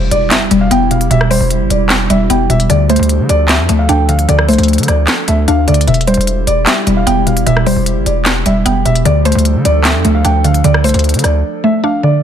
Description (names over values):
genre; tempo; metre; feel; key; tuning
hip hop, trap; 151 BPM; 4/4; half-time; unclear; A4 = 440 Hz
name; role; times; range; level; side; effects
dark concert grand piano; melody; 0.0-12.2 s; C5 to G5; -17 LUFS; equal; low-pass filter, ping-pong delay
mallet-like synth pluck; accompaniment; 0.0-12.2 s; B2 to D4; -14 LUFS; equal; chorus, phaser, low-pass filter
warbly tape-like pad; sustained chords; 0.0-12.2 s; F3 to A4; -20 LUFS; right 1 dB; chorus, built-in reverb
hard-hitting 808-style bass; bass; 0.0-11.4 s; E1 to D3; -14 LUFS; equal; none
impact; sound effects; 0.0-1.1 s; none; -27 LUFS; equal; none
trap drum kit; drums; 0.1-11.3 s; handclaps, hi-hat, rim click, snare drum; -16 LUFS; equal; none
room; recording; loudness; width
light reverb, digital ambience; none; -9 LUFS; side -9 dB against mid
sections
0.0-12.2 A section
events
impact 0.0-1.1; drums muted 11.4-12.2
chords
0.0 Em; 2.7 Dm; 5.9 Em; 9.1 Dm